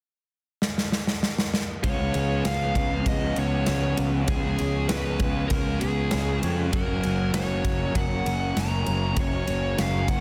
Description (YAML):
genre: rock, shoegaze and dream pop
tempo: 98 BPM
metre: 4/4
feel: straight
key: unclear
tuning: A4 = 440 Hz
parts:
  - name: big rock drum kit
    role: drums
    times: 0.6-10.2 s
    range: kick drum, ride cymbal, snare drum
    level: -30 LUFS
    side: equal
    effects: none
  - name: fuzz lead guitar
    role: melody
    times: 1.8-10.2 s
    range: G#4 to A#5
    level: -33 LUFS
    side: equal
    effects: distortion, slapback echo
  - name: overdriven electric guitar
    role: riff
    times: 1.8-10.2 s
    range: F#2 to F#4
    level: -35 LUFS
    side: equal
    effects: reverse reverb
  - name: thick fuzz guitar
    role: riff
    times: 1.8-10.2 s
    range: F#2 to C#4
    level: -34 LUFS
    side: equal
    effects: distortion, subtle chorus
  - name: fuzz picked electric bass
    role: bass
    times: 1.8-10.2 s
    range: F#1 to E#2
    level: -30 LUFS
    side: equal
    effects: overdrive
  - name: lush unison pad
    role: sustained chords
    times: 2.8-10.2 s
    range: G#4 to C#6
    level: -42 LUFS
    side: equal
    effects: chorus, phaser
  - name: fingerpicked twelve-string acoustic guitar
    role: arpeggios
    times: 2.1-10.2 s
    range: F#3 to G#4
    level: -39 LUFS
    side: equal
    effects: none
room: light reverb, small room ambience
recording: dense, heavily limited modern master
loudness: -25 LUFS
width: mono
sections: 0.0-1.8 A section; 1.8-10.2 B section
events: drum fill 0.6-1.8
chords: 0.0 N.C.; 1.8 C#5; 6.7 F#